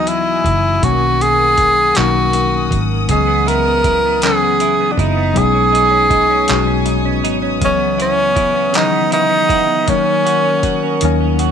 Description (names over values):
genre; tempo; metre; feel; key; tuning
slow six-eight R&B; 53 BPM (dotted quarters); 6/8; straight; C# dorian; A4 = 443 Hz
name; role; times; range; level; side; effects
breathy tenor saxophone; melody; 0.0-11.4 s; C#4 to A#4; -14 LUFS; right 1 dB; slapback echo
tine electric piano; accompaniment; 0.0-11.5 s; D#3 to D#5; -20 LUFS; left 15 dB; medium stereo tremolo
warm studio string section; sustained chords; 0.0-11.5 s; B3 to D#6; -25 LUFS; equal; none
vintage muted fingered electric bass; bass; 0.0-11.5 s; F#1 to D#2; -20 LUFS; right 1 dB; none
dusty soul sampler-style drum kit; drums; 0.1-11.5 s; handclaps, hi-hat, kick drum; -21 LUFS; right 1 dB; none
semi-hollow electric guitar; second line; 3.1-11.5 s; B2 to F#4; -22 LUFS; right 15 dB; analog chorus
room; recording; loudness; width
little or no reverb; 1960s-style stereo with parts hard left and right; -12 LUFS; side -7 dB against mid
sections
0.0-11.5 A section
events
drum fill 11.0-11.5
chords
0.0 C#m11; 0.8 Bmaj7; 3.1 C#m11; 5.3 B69; 7.6 C#m11; 9.9 D#m7